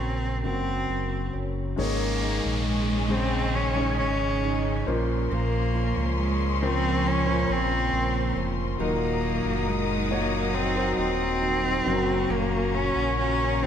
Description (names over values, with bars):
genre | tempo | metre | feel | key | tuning
pop ballad | 68 BPM | 4/4 | straight | unclear | A4 = 440 Hz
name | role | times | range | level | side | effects
warm cello | melody | 0.0-13.7 s | Ab3 to Db4 | -28 LUFS | equal | none
warm concert grand piano | accompaniment | 0.0-13.7 s | Ab2 to Db5 | -30 LUFS | left 3 dB | none
picked steel-string acoustic guitar | arpeggios | 0.0-13.7 s | Ab2 to C5 | -35 LUFS | right 5 dB | none
sub bass with octave | bass | 0.0-13.7 s | Eb1 to Db2 | -29 LUFS | equal | none
rich chamber cello section | second line | 1.8-13.7 s | Ab2 to Eb4 | -32 LUFS | right 1 dB | none
warm studio string section | sustained chords | 1.8-13.7 s | Ab4 to Eb6 | -36 LUFS | left 3 dB | none
downlifter | sound effects | 1.8-8.8 s | none | -38 LUFS | equal | none
room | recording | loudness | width
moderate scoring stage reverb, RT60 1.5 s | none | -23 LUFS | side -8 dB against mid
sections
0.0-1.8 A section; 1.8-13.7 B section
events
none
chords
0.0 Gb; 1.8 Absus4; 4.9 Bbmadd9; 8.8 Ebm; 11.9 Gb